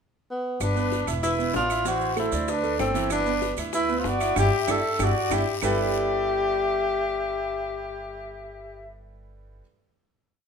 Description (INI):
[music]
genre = Afro-Cuban jazz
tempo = 191 BPM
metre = 4/4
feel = straight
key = G major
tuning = A4 = 444 Hz
[part]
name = mellow tenor saxophone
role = melody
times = 0.3-8.9 s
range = B3 to A4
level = -26 LUFS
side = left 1 dB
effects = none
[part]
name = breathy silver concert flute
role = second line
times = 0.6-8.9 s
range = A4 to E5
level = -32 LUFS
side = left 3 dB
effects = none
[part]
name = upright bass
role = bass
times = 0.6-9.6 s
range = E1 to D2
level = -31 LUFS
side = equal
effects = none
[part]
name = bongos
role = percussion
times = 0.6-5.7 s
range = none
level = -36 LUFS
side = left 8 dB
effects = none
[part]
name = claves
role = percussion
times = 0.6-5.7 s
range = none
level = -39 LUFS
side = right 8 dB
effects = none
[part]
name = guiro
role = percussion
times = 0.6-5.7 s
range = none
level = -40 LUFS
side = left 6 dB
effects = none
[part]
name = maracas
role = percussion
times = 0.6-5.7 s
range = none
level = -39 LUFS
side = right 8 dB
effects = none
[part]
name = bright grand piano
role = accompaniment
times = 0.8-9.6 s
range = E3 to E5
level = -30 LUFS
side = right 5 dB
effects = none
[sound]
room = moderate large studio reverb, RT60 1.1 s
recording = minimal, uncompressed stereo recording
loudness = -22 LUFS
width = side -6 dB against mid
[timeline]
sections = 0.0-0.6 pickup bar; 0.6-5.6 A section; 5.6-8.1 final chord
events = band accent 4.4-5.6; drum fill 5.2-5.6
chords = 0.0 N.C.; 0.6 G6; 1.2 E5; 1.9 Am; 2.5 Dsus2; 3.1 G6; 5.6 G69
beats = 0.29 | 0.61 0.92 1.23 1.54 | 1.86 2.17 2.48 2.79 | 3.11 3.42 3.74 4.05 | 4.37 4.68 5.00 5.31 | 5.63 5.94 6.26 6.57 | 6.89 7.20 7.52 7.83